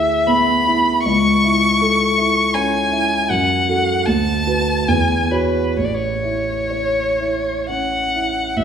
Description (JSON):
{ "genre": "classical, romantic duo for violin and grand piano", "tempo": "58-82 BPM", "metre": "3/4", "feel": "rubato", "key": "A major", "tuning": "A4 = 440 Hz", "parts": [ { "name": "warm violin", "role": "melody", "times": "0.0-8.6 s", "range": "B4 to C#6", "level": "-18 LUFS", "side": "left 1 dB", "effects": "none" }, { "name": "dark concert grand piano", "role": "accompaniment", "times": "0.0-8.6 s", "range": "A1 to C#5", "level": "-19 LUFS", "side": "right 1 dB", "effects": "none" } ], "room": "wet scoring stage reverb, RT60 1.6 s", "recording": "recorded in a church or concert hall", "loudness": "-15 LUFS", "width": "side -8 dB against mid", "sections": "0.0-8.6 A section", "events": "none", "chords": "0.0 E7/D; 1.1 A/C#; 3.3 F#m; 4.1 Bm/D; 4.9 E69; 5.8 A", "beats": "0.27 | 1.05 1.80 2.54 | 3.30 4.07 4.88 | 5.77 6.70 7.70 | 8.56" }